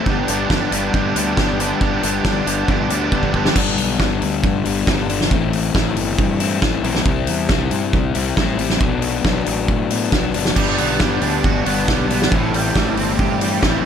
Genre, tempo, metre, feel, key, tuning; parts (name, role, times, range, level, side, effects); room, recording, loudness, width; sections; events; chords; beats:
indie rock; 137 BPM; 4/4; straight; A4 = 440 Hz
crunchy overdriven guitar; riff; 0.0-13.9 s; G2 to E4; -21 LUFS; left 9 dB
overdriven electric guitar; riff; 0.0-3.6, 10.6-13.9 s; G2 to G4; -22 LUFS; right 9 dB; analog chorus, digital delay
fuzz fingered electric bass; bass; 0.1-13.8 s; F#1 to A2; -24 LUFS; right 1 dB; overdrive
loose indie drum kit; drums; 0.1-13.7 s; crash cymbal, hi-hat, kick drum, snare drum; -20 LUFS; right 1 dB
small room ambience; -16 LUFS; side -8 dB against mid
0.0-3.6 A section; 3.6-13.9 B section
drum fill 3.1-3.6
0.1 G; 5.3 Am7; 7.1 C6; 8.8 Bm7; 10.6 Gmaj7; 12.3 Am7
| 0.06 0.50 0.93 1.37 | 1.81 2.25 2.69 3.12 | 3.56 4.00 4.44 4.88 | 5.31 5.75 6.19 6.62 | 7.06 7.50 7.94 8.37 | 8.81 9.25 9.69 10.12 | 10.56 11.00 11.44 11.88 | 12.31 12.75 13.19 13.63